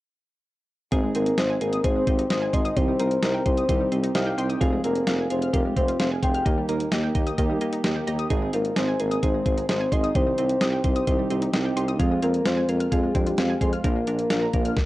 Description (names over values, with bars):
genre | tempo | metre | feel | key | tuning
synth-pop | 130 BPM | 4/4 | straight | unclear | A4 = 439 Hz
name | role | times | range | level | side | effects
soft electric-piano-like synth keys | accompaniment | 0.9-14.7 s | Ab3 to G5 | -27 LUFS | right 2 dB | chorus, tremolo
analog pluck | arpeggios | 0.9-14.7 s | Eb3 to F6 | -34 LUFS | left 2 dB | chorus, tape echo
warm tuba | bass | 0.9-14.7 s | F1 to F2 | -27 LUFS | equal | none
clean 12-bit digital drum machine | drums | 0.9-14.9 s | hi-hat, kick drum, snare drum | -26 LUFS | equal | none
soft octave-layered synth lead | melody | 1.1-14.9 s | G4 to G5 | -27 LUFS | left 2 dB | chorus, tremolo, tape echo
room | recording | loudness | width
little or no reverb | dry, gritty hardware recording, cassette tape | -21 LUFS | side -17 dB against mid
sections
0.9-14.9 A section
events
synth keys fill 3.9-4.6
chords
0.9 Ab; 2.8 Cm; 4.6 Fm; 6.5 Eb; 8.3 Ab; 10.2 Cm; 12.0 Fm; 13.8 Bb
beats
| 0.92 1.38 1.84 2.30 | 2.77 3.23 3.69 4.15 | 4.61 5.07 5.54 6.00 | 6.46 6.92 7.38 7.84 | 8.30 8.77 9.23 9.69 | 10.15 10.61 11.07 11.54 | 12.00 12.46 12.92 13.38 | 13.84 14.30 14.77